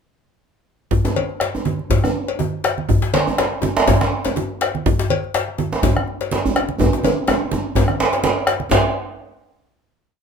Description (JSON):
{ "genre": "west african traditional, West African drum ensemble", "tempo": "123 BPM", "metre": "4/4", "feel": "swing 54% on 16ths", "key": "none", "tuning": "none", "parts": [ { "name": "bombo", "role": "percussion", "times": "0.9-8.9 s", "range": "none", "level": "-21 LUFS", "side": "left 2 dB", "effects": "none" }, { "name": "congas", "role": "percussion", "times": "0.9-8.9 s", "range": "none", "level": "-25 LUFS", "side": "right 7 dB", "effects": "none" }, { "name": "djembe", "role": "percussion", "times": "0.9-8.9 s", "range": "none", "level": "-23 LUFS", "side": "left 3 dB", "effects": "none" }, { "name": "djembe", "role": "percussion", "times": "1.0-8.9 s", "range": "none", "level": "-20 LUFS", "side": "right 3 dB", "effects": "none" }, { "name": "cowbell", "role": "percussion", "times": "1.2-8.9 s", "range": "none", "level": "-24 LUFS", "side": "left 8 dB", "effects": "none" } ], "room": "wet studio reverb, RT60 0.5 s", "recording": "minimal, uncompressed stereo recording", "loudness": "-17 LUFS", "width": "side -6 dB against mid", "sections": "0.9-8.7 A section; 8.7-10.2 final hit", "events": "speeding up 0.9-10.2; drum fill 6.8-8.7", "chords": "none", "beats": "| 0.91 1.41 1.90 2.40 | 2.89 3.39 3.88 4.37 | 4.86 5.35 5.83 6.32 | 6.80 7.28 7.76 8.24 | 8.72" }